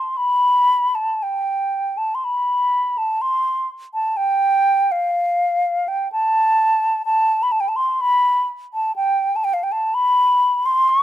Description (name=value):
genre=celtic folk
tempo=62 BPM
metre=4/4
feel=rubato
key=A minor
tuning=A4 = 440 Hz
part: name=wooden flute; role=solo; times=0.0-11.0 s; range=F5 to D6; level=-16 LUFS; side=equal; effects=slapback echo
room=little or no reverb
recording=recorded outdoors, with no room sound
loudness=-16 LUFS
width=side -12 dB against mid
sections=0.2-11.0 A section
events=none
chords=none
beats=| 0.15 1.20 2.20 3.19 | 4.18 5.15 6.11 7.05 | 8.01 8.97 9.93 10.89